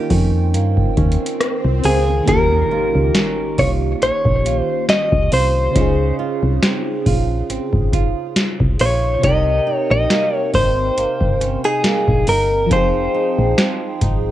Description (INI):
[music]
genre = contemporary R&B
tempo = 69 BPM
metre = 4/4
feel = swing 54% on 16ths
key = unclear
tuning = A4 = 437 Hz
[part]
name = FM electric piano with soft pad layer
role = accompaniment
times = 0.0-14.3 s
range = C3 to G5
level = -24 LUFS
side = left 1 dB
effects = chorus, phaser, cassette tape
[part]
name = flamenco guitar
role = arpeggios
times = 0.0-14.3 s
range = C3 to G4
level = -26 LUFS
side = right 10 dB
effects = cassette tape, tape echo
[part]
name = swell and impact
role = sound effects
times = 0.5-5.8 s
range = none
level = -27 LUFS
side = left 1 dB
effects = none
[part]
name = solid FM bass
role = bass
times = 0.1-14.3 s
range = F1 to G2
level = -18 LUFS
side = equal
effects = none
[part]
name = booming analog drum machine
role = drums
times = 0.1-14.2 s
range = hi-hat, kick drum, rim click, snare drum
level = -19 LUFS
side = equal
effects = cassette tape
[part]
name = direct-recorded clean electric guitar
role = melody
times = 1.9-14.3 s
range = Ab4 to Eb5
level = -18 LUFS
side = equal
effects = cassette tape
[sound]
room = light reverb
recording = home recording on cassette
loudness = -14 LUFS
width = side -13 dB against mid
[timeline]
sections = 0.0-2.3 A section; 2.3-14.3 B section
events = swell 0.5-2.3; impact 2.3-5.8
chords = 0.0 Eb7; 2.3 Eb9; 5.8 Dbmaj7; 9.2 Cm7; 12.7 Fm7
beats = 0.54 1.41 | 2.28 3.15 4.01 4.88 | 5.75 6.62 7.49 8.36 | 9.23 10.10 10.97 11.84 | 12.71 13.58